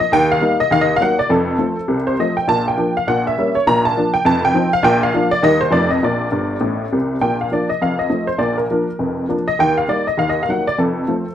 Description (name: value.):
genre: jazz, stride piano.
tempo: 203 BPM.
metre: 4/4.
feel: swing 60% on 8ths.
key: Bb major.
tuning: A4 = 443 Hz.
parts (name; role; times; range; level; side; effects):
honky-tonk upright piano; solo; 0.0-11.3 s; F1 to Bb5; -15 LUFS; equal; none.
room: moderate small room ambience, RT60 0.5 s.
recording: dark, warm production, faint mains hum.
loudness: -15 LUFS.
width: side -10 dB against mid.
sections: 0.0-7.2 A section; 7.2-11.3 A section.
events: honky-tonk piano fill 6.3-7.2.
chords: 0.1 Eb; 0.7 Ebm; 1.3 F; 2.5 Bb; 3.1 Bbdim7; 3.7 Bb; 4.3 F5; 4.8 Bb; 5.4 Eb; 5.7 F7; 6.0 Bb; 7.8 F7; 8.4 Bb; 9.6 Eb; 10.2 Ebm; 10.8 F.